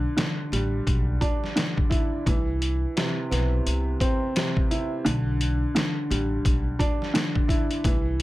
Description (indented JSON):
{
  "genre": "hip hop, boom-bap hip-hop",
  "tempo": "86 BPM",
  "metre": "4/4",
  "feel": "swing 61% on 16ths",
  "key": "E minor",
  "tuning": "A4 = 440 Hz",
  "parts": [
    { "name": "warm upright piano", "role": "accompaniment", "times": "0.0-8.2 s", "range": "C3 to E4", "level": "-27 LUFS", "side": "right 1 dB", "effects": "high-pass filter, low-pass filter" },
    { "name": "upright bass", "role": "bass", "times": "0.0-8.2 s", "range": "A1 to C2", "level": "-26 LUFS", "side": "equal", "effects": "none" },
    { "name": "trip hop sampler-style drum kit", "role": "drums", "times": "0.2-8.2 s", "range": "hi-hat, kick drum, snare drum", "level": "-25 LUFS", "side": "equal", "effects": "none" }
  ],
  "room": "light reverb",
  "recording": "none",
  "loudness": "-22 LUFS",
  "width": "side -17 dB against mid",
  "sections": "0.0-7.8 A section",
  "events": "none",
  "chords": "0.0 Em7; 2.3 Cmaj7; 5.1 Em7",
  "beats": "0.17 0.87 1.56 | 2.26 2.96 3.66 4.36 | 5.05 5.75 6.45 7.15 | 7.84"
}